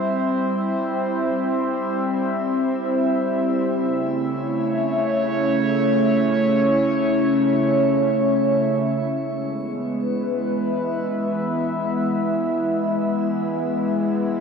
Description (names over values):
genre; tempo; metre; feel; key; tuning
ambient; free time; none; none; unclear; A4 = 440 Hz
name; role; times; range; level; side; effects
warbly tape-like pad; sustained chords; 0.0-14.4 s; C#3 to E5; -19 LUFS; equal; chorus, built-in reverb, phaser, shimmer reverb
bowed-like drone; drone; 9.7-14.4 s; E3 to E4; -29 LUFS; right 3 dB; built-in reverb
room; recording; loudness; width
wet lush hall reverb, RT60 2.6 s; none; -19 LUFS; side -6 dB against mid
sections
0.0-9.1 A section; 9.1-14.4 B section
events
none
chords
0.0 C; 3.7 A/C#; 9.1 E